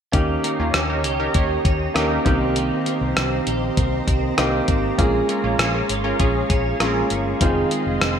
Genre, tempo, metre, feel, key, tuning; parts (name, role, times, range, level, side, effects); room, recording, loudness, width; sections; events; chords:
1980s-style pop; 99 BPM; 4/4; straight; A4 = 435 Hz
clear concert grand piano; accompaniment; 0.1-8.2 s; Bb3 to Ab4; -23 LUFS; equal; shimmer reverb
string machine, violas; sustained chords; 0.1-8.2 s; G4 to C6; -27 LUFS; equal; ensemble chorus, shimmer reverb
twelve-string electric guitar; riff; 0.1-8.2 s; Eb3 to G4; -27 LUFS; right 4 dB; ensemble chorus, digital delay, shimmer reverb
vintage muted fingered electric bass; bass; 0.1-8.2 s; F1 to Eb2; -26 LUFS; left 1 dB
clean 12-bit digital drum machine; drums; 0.1-8.2 s; hi-hat, kick drum, rim click; -22 LUFS; left 1 dB; gated reverb
funky polysynth comp; stabs; 0.4-7.0 s; Bb3 to Db5; -28 LUFS; right 1 dB; chorus, shimmer reverb
moderate plate reverb, RT60 1.5 s; bright 1980s-style digital production; -18 LUFS; side -8 dB against mid
0.1-8.2 A section
0.1 Eb7; 2.3 Cm7; 5.0 Bbm7; 7.4 Fm7